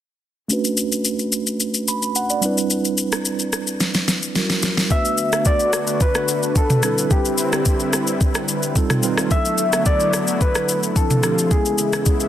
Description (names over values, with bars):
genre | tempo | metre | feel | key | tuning
amapiano | 109 BPM | 4/4 | straight | unclear | A4 = 440 Hz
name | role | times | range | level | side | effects
mellow tine electric piano | accompaniment | 0.5-12.3 s | F3 to B5 | -23 LUFS | right 3 dB | medium stereo tremolo, low-pass filter
smooth R&B drum kit | drums | 0.5-12.3 s | kick drum, rim click, shaker, snare drum, toms | -20 LUFS | equal | none
soft struck synth lead | melody | 4.9-12.3 s | G4 to E5 | -22 LUFS | left 2 dB | chorus, tape echo
warm analog pad | sustained chords | 5.2-12.3 s | C#3 to B4 | -25 LUFS | left 1 dB | chorus, sidechain pumping
room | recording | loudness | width
light reverb | dense, heavily limited modern master | -17 LUFS | side -11 dB against mid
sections
0.5-4.9 A section; 4.9-12.3 B section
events
filter sweep on tine electric piano 0.5-4.9; drum fill 3.8-4.9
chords
0.5 Bm9; 2.4 Cmaj9; 4.4 F#7b9; 4.9 Bm7; 6.8 Cmaj9; 8.8 F9; 9.3 E9sus4; 11.0 Dm7; 11.5 C#m7